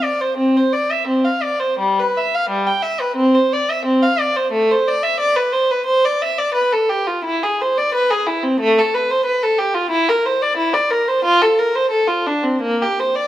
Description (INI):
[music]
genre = classical, baroque-style suite movement for unaccompanied violin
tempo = 89 BPM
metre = 4/4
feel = uneven beats, rubato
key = F major from 9.9 s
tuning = A4 = 441 Hz
[part]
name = dark violin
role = solo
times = 0.0-13.3 s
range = G3 to G5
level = -15 LUFS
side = equal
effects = none
[sound]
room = moderate recital hall reverb, RT60 1.6 s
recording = close, detailed microphones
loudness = -15 LUFS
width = side -13 dB against mid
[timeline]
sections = 0.0-13.3 A section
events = none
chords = none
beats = 0.39 1.07 | 1.79 2.50 3.18 3.86 | 4.53 5.20 5.87 6.55 | 7.25 7.94 8.60 9.26 | 9.92 10.57 11.23 11.89 | 12.60